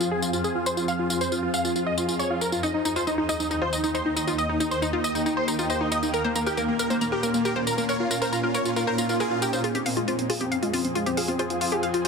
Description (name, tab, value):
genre	uplifting trance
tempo	137 BPM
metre	4/4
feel	straight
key	F minor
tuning	A4 = 440 Hz
part	big supersaw lead	melody	0.0-12.1 s	Ab3 to F5	-27 LUFS	equal	phaser, low-pass filter, dub echo
part	wide unison pluck	second line	0.0-12.1 s	Bb3 to F5	-31 LUFS	right 1 dB	digital delay
part	shimmering ambient pad	sustained chords	0.0-12.1 s	Eb2 to Ab4	-29 LUFS	equal	chorus, built-in reverb
part	electronic tambourine and hi-hat	drums	0.0-12.1 s	none	-32 LUFS	equal	none
part	analog pluck	arpeggios	2.6-12.1 s	Eb4 to Bb5	-30 LUFS	left 3 dB	chorus, digital delay
part	swell	sound effects	8.9-9.6 s	none	-34 LUFS	right 5 dB	none
room	light reverb, digital ambience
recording	dense, heavily limited modern master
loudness	-23 LUFS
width	side -5 dB against mid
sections	0.0-9.6 A section; 9.6-12.1 B section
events	filter sweep on supersaw synth 0.0-9.6, 9.6-12.1; filter sweep on ambient pad 0.0-9.6; swell 8.9-9.6; build-up 9.6-12.1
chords	0.0 Fm; 2.6 Eb; 6.1 Bbm; 9.6 Fm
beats	0.01 0.44 | 0.88 1.32 1.76 2.19 | 2.63 3.07 3.51 3.95 | 4.38 4.82 5.26 5.70 | 6.14 6.58 7.01 7.45 | 7.89 8.33 8.77 9.20 | 9.64 10.08 10.52 10.95 | 11.39 11.83